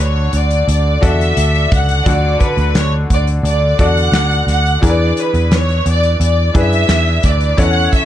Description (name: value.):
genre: piano-driven pop.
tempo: 87 BPM.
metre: 4/4.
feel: straight.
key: D major.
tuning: A4 = 440 Hz.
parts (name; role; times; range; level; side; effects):
rich studio violin section; melody; 0.0-8.1 s; B4 to F#5; -17 LUFS; equal; none.
bright upright piano; accompaniment; 0.0-8.1 s; D3 to F#5; -20 LUFS; left 2 dB; none.
vintage muted picked electric bass; bass; 0.0-7.9 s; C#2 to F#2; -15 LUFS; equal; none.
loose indie drum kit; drums; 0.3-8.1 s; handclaps, hi-hat, kick drum, snare drum; -17 LUFS; equal; none.
room: light reverb.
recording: dark, warm production.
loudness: -11 LUFS.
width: side -11 dB against mid.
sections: 0.0-8.1 A section.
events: none.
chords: 0.0 D; 4.8 E7.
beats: 0.68 1.37 | 2.06 2.75 3.44 4.14 | 4.83 5.52 6.21 6.90 | 7.59.